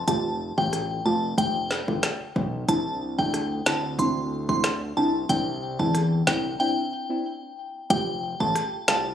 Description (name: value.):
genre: dancehall.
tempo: 92 BPM.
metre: 4/4.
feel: straight.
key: C major.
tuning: A4 = 440 Hz.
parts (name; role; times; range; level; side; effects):
fat analog bass; bass; 0.0-9.1 s; F1 to E2; -29 LUFS; equal; none.
glassy synth bell; melody; 0.1-9.1 s; G5 to C6; -28 LUFS; equal; chorus, ping-pong delay.
deep mellow chord stab; accompaniment; 0.1-9.1 s; A3 to G4; -28 LUFS; equal; chorus, phaser.
afro-pop drum kit; drums; 0.1-9.0 s; hi-hat, kick drum, rim click, snare drum; -26 LUFS; equal; none.
room: light reverb, digital ambience.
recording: recorded on a phone in the room, club reverb, compression.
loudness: -23 LUFS.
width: side -9 dB against mid.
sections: 0.0-7.9 A section; 7.9-9.1 B section.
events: break 6.6-7.9.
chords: 0.0 Fadd9; 2.7 Cadd9; 7.9 Fadd9.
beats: | 0.08 0.73 1.38 2.03 | 2.69 3.34 3.99 4.64 | 5.29 5.95 6.60 7.25 | 7.90 8.55.